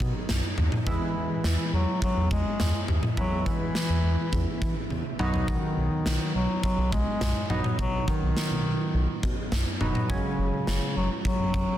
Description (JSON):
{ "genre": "synth-pop", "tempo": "104 BPM", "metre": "4/4", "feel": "straight", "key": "B major", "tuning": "A4 = 440 Hz", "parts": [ { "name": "warm analog keys", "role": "accompaniment", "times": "0.0-11.8 s", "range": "F#3 to E4", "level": "-33 LUFS", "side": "right 2 dB", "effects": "chorus" }, { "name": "smooth synth bass", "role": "bass", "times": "0.0-11.7 s", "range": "E1 to E3", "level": "-28 LUFS", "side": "equal", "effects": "none" }, { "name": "huge arena drum kit", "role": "drums", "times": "0.0-11.7 s", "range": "kick drum, snare drum, toms", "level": "-29 LUFS", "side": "equal", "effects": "none" }, { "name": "warm bass clarinet", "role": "melody", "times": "0.9-11.8 s", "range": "C#3 to G#3", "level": "-30 LUFS", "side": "left 1 dB", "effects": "tape echo" } ], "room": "light reverb, small room ambience", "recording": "dense, heavily limited modern master", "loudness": "-24 LUFS", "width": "side -12 dB against mid", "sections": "0.0-11.8 A section", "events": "drum fill 4.9-5.5", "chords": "0.0 B; 0.9 E; 5.2 B; 10.1 F#sus2", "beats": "0.29 | 0.87 1.44 2.02 2.60 | 3.17 3.75 4.33 4.91 | 5.48 6.06 6.63 7.21 | 7.79 8.37 8.94 9.52 | 10.10 10.67 11.25" }